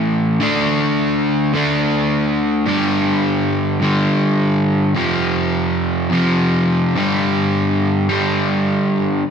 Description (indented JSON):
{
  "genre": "rock",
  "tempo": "105 BPM",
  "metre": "4/4",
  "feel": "straight",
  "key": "unclear",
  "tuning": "A4 = 441 Hz",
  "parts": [
    { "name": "crunchy overdriven guitar", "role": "solo", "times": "0.0-9.2 s", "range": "F2 to D4", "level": "-15 LUFS", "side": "equal", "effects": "none" }
  ],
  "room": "wet concert hall reverb, RT60 2.0 s",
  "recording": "big arena sound",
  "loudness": "-15 LUFS",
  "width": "side -7 dB against mid",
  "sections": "0.4-9.3 A section",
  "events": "none",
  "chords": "0.4 D5; 2.7 G5; 5.0 F5; 7.0 G5"
}